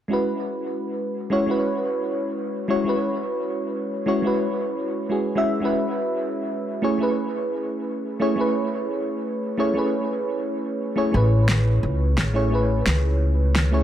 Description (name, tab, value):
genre	liquid drum and bass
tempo	174 BPM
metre	4/4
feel	straight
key	E major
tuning	A4 = 440 Hz
part	mellow FM electric piano	accompaniment	0.1-13.8 s	G#3 to E5	-22 LUFS	equal	chorus, dub echo
part	upright bass	bass	11.1-13.8 s	A1 to C#2	-19 LUFS	equal	none
part	electronic snare drum	drums	11.5-13.6 s	none	-24 LUFS	equal	small room ambience
room	moderate plate reverb, RT60 1.3 s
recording	echo-heavy mix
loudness	-21 LUFS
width	side -11 dB against mid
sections	0.1-13.8 A section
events	none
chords	0.1 E69; 6.8 Amaj9